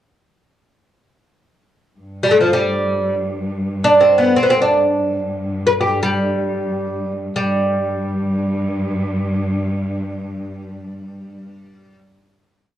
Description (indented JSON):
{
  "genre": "persian",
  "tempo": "free time",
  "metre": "none",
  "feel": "none",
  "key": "unclear",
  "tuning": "A4 = 440 Hz",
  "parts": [
    { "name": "clear studio cello section", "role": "drone", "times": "1.9-11.4 s", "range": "G2", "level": "-23 LUFS", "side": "equal", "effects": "none" },
    { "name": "oud", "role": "melody", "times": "2.2-12.0 s", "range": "F3 to B4", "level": "-16 LUFS", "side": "equal", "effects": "none" }
  ],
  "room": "wet studio reverb, RT60 0.6 s",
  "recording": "worn, warbling old tape, cassette tape, warbly pitch drift",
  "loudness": "-16 LUFS",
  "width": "side -11 dB against mid",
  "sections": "1.9-7.4 free-time section; 7.4-10.6 final note",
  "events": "slowing down 4.5-7.4",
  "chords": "none",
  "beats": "free time"
}